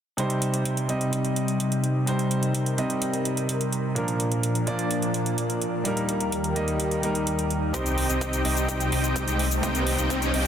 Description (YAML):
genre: EDM, festival progressive house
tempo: 127 BPM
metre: 4/4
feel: straight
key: C minor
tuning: A4 = 438 Hz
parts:
  - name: clear concert grand piano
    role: accompaniment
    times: 0.2-10.5 s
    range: Bb2 to Eb5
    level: -26 LUFS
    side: right 1 dB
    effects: sidechain pumping, dub echo
  - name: lush unison pad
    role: sustained chords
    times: 0.8-10.5 s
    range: Eb2 to C5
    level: -29 LUFS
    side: left 1 dB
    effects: chorus, phaser, sidechain pumping
  - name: electronic hi-hat and shaker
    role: drums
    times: 0.2-10.4 s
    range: none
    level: -31 LUFS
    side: right 1 dB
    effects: none
  - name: dense compressed supersaw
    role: riff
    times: 7.7-10.5 s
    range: C4 to G5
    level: -27 LUFS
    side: equal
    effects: sidechain pumping, low-pass filter, dub echo
  - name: saturated sub bass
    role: bass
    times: 7.7-10.5 s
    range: C2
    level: -28 LUFS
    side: equal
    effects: sidechain pumping
  - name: electronic kick drum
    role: drums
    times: 7.7-10.2 s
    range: none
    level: -37 LUFS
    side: equal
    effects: none
  - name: riser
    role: sound effects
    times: 8.8-10.5 s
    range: none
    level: -32 LUFS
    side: left 1 dB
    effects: none
room: light reverb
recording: dense, heavily limited modern master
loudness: -23 LUFS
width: side -9 dB against mid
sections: 0.2-7.7 A section; 7.7-10.5 B section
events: filter sweep on analog synth pad 0.2-7.7; build-up 7.7-10.5; filter sweep on supersaw synth 7.7-10.5; riser 8.8-10.5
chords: 0.2 Cm; 4.0 Bb; 5.9 Eb; 7.7 Cm